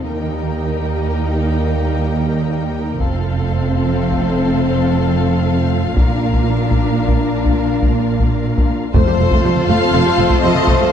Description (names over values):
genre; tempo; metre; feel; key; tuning
cinematic, epic orchestral film score; 81 BPM (dotted quarters); 12/8; straight; F mixolydian; A4 = 440 Hz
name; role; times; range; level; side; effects
warm symphonic viola section; accompaniment; 0.0-10.9 s; G3 to F4; -24 LUFS; right 2 dB; none
dark symphonic string section; sustained chords; 0.0-10.9 s; Bb3 to F5; -24 LUFS; left 1 dB; none
mellow French horn section; sustained chords; 0.0-10.9 s; G3 to C5; -23 LUFS; left 5 dB; none
dark symphonic double bass section; bass; 0.0-10.7 s; F1 to Eb2; -20 LUFS; right 3 dB; none
warm symphonic cello section; bass; 0.0-10.8 s; Eb2 to Bb2; -21 LUFS; right 2 dB; none
warm symphonic violin section; melody; 0.1-10.9 s; C5 to G5; -25 LUFS; left 6 dB; none
warm symphonic violin section; second line; 0.1-10.9 s; A4 to C5; -26 LUFS; left 3 dB; none
solo taiko drums; drums; 3.0-10.9 s; none; -18 LUFS; left 1 dB; none
warm trombone section; sustained chords; 9.0-10.9 s; F3 to A3; -25 LUFS; right 3 dB; none
timpani; percussion; 9.0-9.6 s; F2; -22 LUFS; left 2 dB; none
room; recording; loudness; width
moderate concert hall reverb, RT60 2.1 s; dark, warm production; -14 LUFS; side -8 dB against mid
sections
0.0-8.9 A section; 8.9-10.9 B section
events
none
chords
0.0 Eb; 3.0 F; 6.0 Bb; 8.9 F